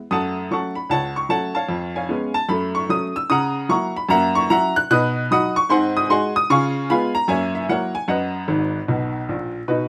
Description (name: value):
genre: jazz, stride piano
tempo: 150 BPM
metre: 4/4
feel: swing 64% on 8ths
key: unclear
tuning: A4 = 440 Hz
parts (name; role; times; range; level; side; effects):
- clear upright piano; solo; 0.1-9.9 s; G#1 to F#6; -21 LUFS; equal; none
room: moderate club reverb, RT60 0.5 s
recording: vinyl crackle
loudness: -21 LUFS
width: mono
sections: 0.0-9.7 A section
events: upright piano fill 8.5-9.7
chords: 0.1 F#m; 1.7 C#7/E#; 2.5 F#m; 3.3 F#7/C#; 4.1 F#7; 4.9 B; 5.7 G#7; 6.5 C#7; 7.3 F#7; 8.1 B/F#; 8.9 F#